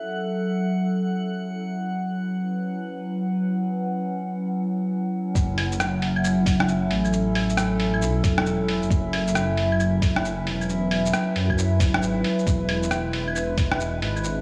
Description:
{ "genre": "future garage", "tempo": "135 BPM", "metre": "4/4", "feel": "swing 64% on 16ths", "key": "F# minor", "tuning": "A4 = 441 Hz", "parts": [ { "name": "warbly tape-like pad", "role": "sustained chords", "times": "0.0-14.4 s", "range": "F#3 to F#5", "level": "-27 LUFS", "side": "equal", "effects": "chorus, built-in reverb, sidechain pumping" }, { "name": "drifting glass-harmonics texture", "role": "texture", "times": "0.0-4.5 s", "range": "F#5", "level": "-40 LUFS", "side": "equal", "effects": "chorus, built-in reverb" }, { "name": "dark detuned saw bass", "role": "bass", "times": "5.4-14.4 s", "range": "E1 to F#2", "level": "-28 LUFS", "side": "equal", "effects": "sidechain pumping" }, { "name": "electronic kick drum", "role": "drums", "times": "5.4-13.7 s", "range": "none", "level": "-24 LUFS", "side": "equal", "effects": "none" }, { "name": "lo-fi sampler-style drum kit", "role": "drums", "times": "5.4-14.4 s", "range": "claves, hi-hat, rim click, shaker", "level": "-30 LUFS", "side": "equal", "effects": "none" } ], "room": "wet lush hall reverb, RT60 1.8 s, digital ambience", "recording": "dreamy mix soaked in reverb, studio reverb", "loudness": "-24 LUFS", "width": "mono", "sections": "0.0-5.4 A section; 5.4-14.4 B section", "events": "none", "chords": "0.0 F#m7; 12.5 E7", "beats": "| 0.02 0.46 0.91 1.35 | 1.80 2.24 2.69 3.13 | 3.58 4.02 4.46 4.91 | 5.35 5.80 6.24 6.69 | 7.13 7.58 8.02 8.46 | 8.91 9.35 9.80 10.24 | 10.69 11.13 11.57 12.02 | 12.46 12.91 13.35 13.80 | 14.24" }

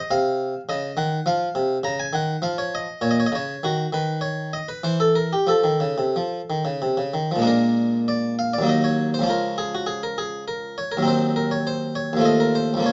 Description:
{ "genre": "classical, baroque-style suite movement for harpsichord", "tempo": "88-104 BPM", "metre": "3/4", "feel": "rubato", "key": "Bb minor", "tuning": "A4 = 440 Hz", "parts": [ { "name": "harpsichord", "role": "solo", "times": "0.0-12.9 s", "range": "Db2 to Bb5", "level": "-23 LUFS", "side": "equal", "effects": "none" } ], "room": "light reverb", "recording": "nothing above 7.7 kHz", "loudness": "-23 LUFS", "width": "mono", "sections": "0.0-7.5 A section; 7.5-12.9 B section", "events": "none", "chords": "0.1 Cmadd11; 1.3 F5; 1.8 Bbm/Db; 3.6 N.C.; 5.5 F; 7.5 Bb7; 8.7 Ebm; 9.3 Db6; 11.1 Cdim/Eb; 12.2 F7/Eb", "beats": "| 0.11 0.69 1.26 | 1.84 2.43 3.03 | 3.62 4.21 4.83 | 5.48 6.16 6.81 | 7.46 8.08 8.68 | 9.27 9.86 10.46 | 11.07 11.66 12.24 | 12.84" }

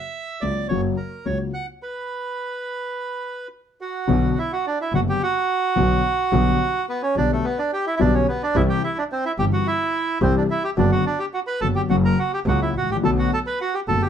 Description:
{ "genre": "tango", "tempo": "107 BPM", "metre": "4/4", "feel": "rubato", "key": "B minor", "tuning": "A4 = 440 Hz", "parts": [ { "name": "bandoneon", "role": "melody", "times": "0.0-14.1 s", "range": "A3 to F#5", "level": "-23 LUFS", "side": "right 3 dB", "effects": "none" }, { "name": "dark grand piano", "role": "accompaniment", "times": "0.4-14.1 s", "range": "F#1 to G4", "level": "-22 LUFS", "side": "left 5 dB", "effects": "none" }, { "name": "clear double bass", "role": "bass", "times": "0.4-14.1 s", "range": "F#1 to C#2", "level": "-23 LUFS", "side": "right 2 dB", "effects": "none" } ], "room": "light reverb", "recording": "dark, warm production", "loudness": "-19 LUFS", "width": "side -8 dB against mid", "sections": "0.0-4.1 A section; 4.1-14.1 B section", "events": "stop 1.8-4.1", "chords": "0.0 F#; 1.8 N.C.; 4.1 Bm; 6.3 G/B; 8.6 C; 10.8 Bm/F#; 11.9 F#; 13.0 Bm7", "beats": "0.15 0.70 1.26 | 1.82 2.38 2.94 3.51 | 4.08 4.64 5.21 5.76 | 6.33 6.88 7.44 8.00 | 8.55 9.11 9.67 10.22 | 10.78 11.34 11.90 12.46 | 13.03 13.59" }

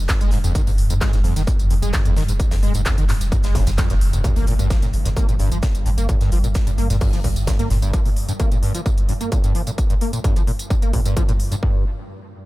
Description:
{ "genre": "driving peak-time techno", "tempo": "130 BPM", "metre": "4/4", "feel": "straight", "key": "G phrygian", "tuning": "A4 = 435 Hz", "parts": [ { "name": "saturated sub bass", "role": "bass", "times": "0.0-7.9 s", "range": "F1 to G1", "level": "-21 LUFS", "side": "equal", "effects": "tube saturation, sidechain pumping, low-pass filter" }, { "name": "swarming drone", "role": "drone", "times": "0.0-11.7 s", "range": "G2", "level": "-29 LUFS", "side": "equal", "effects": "built-in reverb, sidechain pumping" }, { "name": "overdriven acid bass", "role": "riff", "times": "0.1-11.8 s", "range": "F1 to Bb3", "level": "-25 LUFS", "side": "equal", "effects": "ensemble chorus, sidechain pumping, dub echo" }, { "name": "electronic kick drum", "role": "drums", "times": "0.1-11.7 s", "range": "none", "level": "-19 LUFS", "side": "equal", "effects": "distortion" }, { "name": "gated 80s drum kit", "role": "drums", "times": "0.1-7.8 s", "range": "hi-hat, shaker, snare drum", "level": "-37 LUFS", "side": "left 1 dB", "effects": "high-pass filter on hats, high-pass filter on snare, high-pass filter on perc, high-pass filter on room" }, { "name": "techno drum kit", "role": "drums", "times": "0.1-11.6 s", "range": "handclaps, hi-hat, tambourine", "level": "-31 LUFS", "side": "equal", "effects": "none" }, { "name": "impact", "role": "sound effects", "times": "4.2-6.1 s", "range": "none", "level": "-30 LUFS", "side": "equal", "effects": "none" } ], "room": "little or no reverb", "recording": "none", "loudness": "-16 LUFS", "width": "side -18 dB against mid", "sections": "0.0-4.2 A section; 4.2-11.6 B section", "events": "drop 0.0-4.2; band accent 3.8; impact 4.2-6.1", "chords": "0.0 Fm; 4.2 Gm; 11.6 N.C.", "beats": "0.09 | 0.55 1.01 1.47 1.94 | 2.40 2.86 3.32 3.78 | 4.24 4.70 5.17 5.63 | 6.09 6.55 7.01 7.47 | 7.93 8.40 8.86 9.32 | 9.78 10.24 10.70 11.16 | 11.63" }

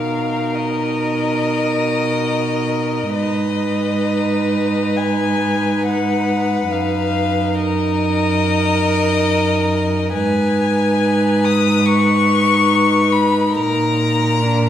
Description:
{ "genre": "classical, slow romantic movement for string quartet", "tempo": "free time", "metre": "none", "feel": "none", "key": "unclear", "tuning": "A4 = 438 Hz", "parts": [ { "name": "warm violin", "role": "melody", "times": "0.0-14.7 s", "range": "Eb5 to Eb6", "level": "-20 LUFS", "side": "left 6 dB", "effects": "none" }, { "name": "dark violin", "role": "second line", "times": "0.0-14.7 s", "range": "Bb4 to Cb5", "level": "-22 LUFS", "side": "left 3 dB", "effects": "none" }, { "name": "dark viola", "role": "accompaniment", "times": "0.0-14.7 s", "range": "D4 to Eb4", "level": "-21 LUFS", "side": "right 3 dB", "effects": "none" }, { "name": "dark cello", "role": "bass", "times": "0.0-14.7 s", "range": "Gb2 to B2", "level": "-20 LUFS", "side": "right 2 dB", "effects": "none" } ], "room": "wet recital hall reverb, RT60 1.4 s", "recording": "heard from further back in the room", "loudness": "-15 LUFS", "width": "side -10 dB against mid", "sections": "0.0-14.7 A section", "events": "none", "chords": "0.0 Bmaj7; 3.2 Abm; 6.7 Ebm/Gb; 10.1 Abm; 13.6 Bb", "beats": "free time" }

